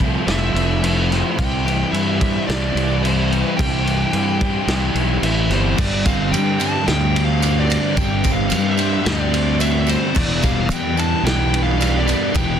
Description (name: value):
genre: rock, shoegaze and dream pop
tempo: 109 BPM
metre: 4/4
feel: straight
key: G mixolydian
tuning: A4 = 440 Hz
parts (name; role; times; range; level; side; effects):
- twelve-string electric guitar; arpeggios; 0.0-12.6 s; F3 to A4; -30 LUFS; left 12 dB; lush chorus, digital delay
- crunchy overdriven guitar; riff; 0.0-12.6 s; E2 to E4; -25 LUFS; right 12 dB; reverse reverb
- thick fuzz guitar; riff; 0.0-12.6 s; E2 to G4; -25 LUFS; left 10 dB; distortion, ensemble chorus
- fuzz fingered electric bass; bass; 0.0-12.6 s; E1 to G2; -21 LUFS; equal; overdrive
- loose indie drum kit; drums; 0.0-12.5 s; crash cymbal, kick drum, ride cymbal, snare drum; -22 LUFS; equal; none
- smooth overdriven lead guitar; melody; 0.3-12.6 s; C5 to A5; -25 LUFS; equal; digital delay
- overdriven semi-hollow guitar; riff; 5.8-12.6 s; E2 to G3; -24 LUFS; equal; none
- tambourine; percussion; 5.8-12.5 s; none; -33 LUFS; right 17 dB; none
room: small room ambience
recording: dense, heavily limited modern master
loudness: -16 LUFS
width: side -8 dB against mid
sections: 0.0-5.8 A section; 5.8-12.6 B section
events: none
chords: 0.0 Fmaj7; 1.4 C; 5.8 Gsus4; 10.2 Em7